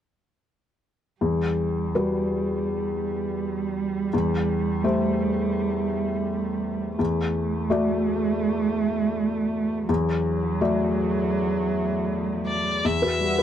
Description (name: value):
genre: neoclassical piano and strings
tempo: 83 BPM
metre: 4/4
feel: rubato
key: E minor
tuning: A4 = 440 Hz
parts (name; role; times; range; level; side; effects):
- warm cello; second line; 1.2-12.6 s; F#3 to A3; -27 LUFS; right 7 dB; none
- felt-muted upright piano; accompaniment; 1.2-13.4 s; E2 to D5; -24 LUFS; left 3 dB; none
- rich violin; melody; 12.5-13.4 s; D5 to E5; -25 LUFS; left 2 dB; none
- shimmering ambient pad; sustained chords; 13.1-13.4 s; G3 to B4; -33 LUFS; right 4 dB; chorus, built-in reverb
room: light reverb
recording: dry, close 1970s-style studio recording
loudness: -22 LUFS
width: side -10 dB against mid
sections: 1.2-12.8 A section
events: none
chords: 1.2 Emadd9; 4.1 Am7/E; 7.0 E9sus4; 12.8 Emadd9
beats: | 1.21 1.95 2.68 3.40 | 4.13 4.84 5.56 6.28 | 6.99 7.71 8.43 9.15 | 9.89 10.61 11.35 12.09 | 12.85